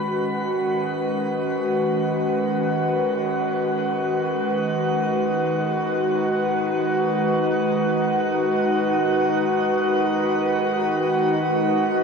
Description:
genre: ambient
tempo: free time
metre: none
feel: none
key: G# minor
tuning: A4 = 444 Hz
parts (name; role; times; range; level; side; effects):
- warbly tape-like pad; sustained chords; 0.0-12.0 s; D#3 to B4; -21 LUFS; equal; chorus, built-in reverb
- glass harmonica; texture; 0.0-12.0 s; F#4 to B5; -25 LUFS; right 1 dB; none
room: wet shimmer reverb, RT60 8.3 s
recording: none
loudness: -20 LUFS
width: side -5 dB against mid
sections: 0.0-12.0 A section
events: none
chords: 0.0 G#m7

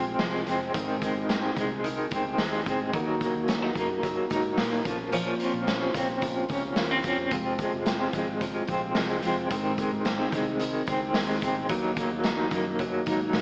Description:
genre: jangly indie pop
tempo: 110 BPM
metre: 4/4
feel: straight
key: unclear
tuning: A4 = 442 Hz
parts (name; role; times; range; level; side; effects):
- fingerpicked steel-string acoustic guitar; accompaniment; 0.0-13.4 s; Ab2 to C5; -32 LUFS; equal; none
- electric guitar through a small old amp; arpeggios; 0.0-13.4 s; Eb3 to Eb4; -28 LUFS; equal; tremolo
- vintage muted fingered electric bass; bass; 0.0-13.4 s; F1 to Bb2; -40 LUFS; equal; none
- raw garage drum kit; drums; 0.2-13.4 s; hi-hat, kick drum, snare drum; -31 LUFS; equal; none
room: moderate club reverb, RT60 0.6 s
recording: cassette tape, small speaker sound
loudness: -25 LUFS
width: side -39 dB against mid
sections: 0.0-13.4 A section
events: none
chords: 0.0 Fm; 0.7 Ab; 2.9 Ebm; 4.9 Bbmadd9; 7.3 Fm; 9.5 Ab; 11.7 Ebm

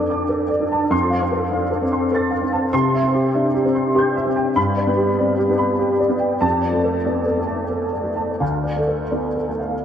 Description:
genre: neoclassical minimalist piano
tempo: 82-102 BPM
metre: 3/4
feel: rubato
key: D dorian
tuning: A4 = 445 Hz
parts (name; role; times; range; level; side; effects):
- warm upright piano; solo; 0.0-9.8 s; D2 to A6; -17 LUFS; equal; ensemble chorus, diffuse ambient delay
room: wet plate reverb, RT60 3.3 s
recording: dreamy mix soaked in reverb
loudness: -17 LUFS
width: side -8 dB against mid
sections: 0.0-9.8 A section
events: none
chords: 0.0 Dm/F; 0.9 F; 2.7 C; 4.6 G; 6.4 Dm/F; 8.4 Dm

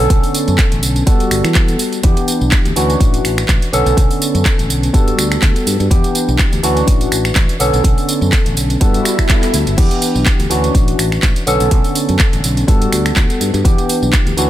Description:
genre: filtered disco house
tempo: 124 BPM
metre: 4/4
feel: swing 55% on 16ths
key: E dorian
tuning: A4 = 441 Hz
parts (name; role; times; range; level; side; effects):
- barky tine electric piano; accompaniment; 0.0-14.5 s; D3 to A4; -17 LUFS; equal; phaser, vintage 12-bit sampler grit, sidechain pumping
- fingered electric bass; bass; 0.0-14.5 s; G1 to E3; -18 LUFS; equal; tube saturation, sidechain pumping
- electronic kick drum; drums; 0.1-14.2 s; none; -13 LUFS; equal; small room ambience
- house drum kit; drums; 0.1-14.5 s; crash cymbal, finger snaps, handclaps, hi-hat, tambourine; -19 LUFS; right 2 dB; sidechain pumping on hats, small room ambience, sidechain pumping on perc, sidechain pumping on cymbals
- swell; sound effects; 8.9-9.8 s; none; -24 LUFS; left 1 dB; none
room: little or no reverb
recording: none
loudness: -11 LUFS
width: side -13 dB against mid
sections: 0.0-14.5 A section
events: swell 8.9-9.8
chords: 0.0 Bm9; 1.1 Gmaj9; 2.0 Em7; 2.8 Dmaj9; 3.7 Bm9; 4.9 Gmaj9; 5.9 Em7; 6.6 Dmaj9; 7.6 Bm9; 8.8 Gmaj9; 9.8 Em7; 10.5 Dmaj9; 11.5 Bm9; 12.7 Gmaj9; 13.6 Em7

